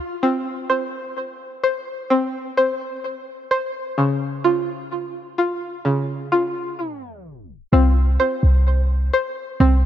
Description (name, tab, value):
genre	hip hop, trap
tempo	128 BPM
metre	4/4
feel	half-time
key	unclear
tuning	A4 = 441 Hz
part	string-like resonator pluck	arpeggios	0.0-9.9 s	Db3 to C5	-21 LUFS	equal	chorus, low-pass filter, digital delay
part	clean 808-style bass	bass	7.7-9.9 s	C2	-15 LUFS	equal	none
room	light reverb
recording	tape stop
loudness	-19 LUFS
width	side -11 dB against mid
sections	0.2-7.7 A section; 7.7-9.9 B section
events	tape stop 6.8-7.7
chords	0.2 N.C.; 4.0 Db; 7.7 N.C.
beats	| 0.23 0.70 1.17 1.63 | 2.10 2.57 3.04 3.51 | 3.98 4.45 4.92 5.38 | 5.85 6.32 6.79 7.26 | 7.73 8.20 8.66 9.13 | 9.60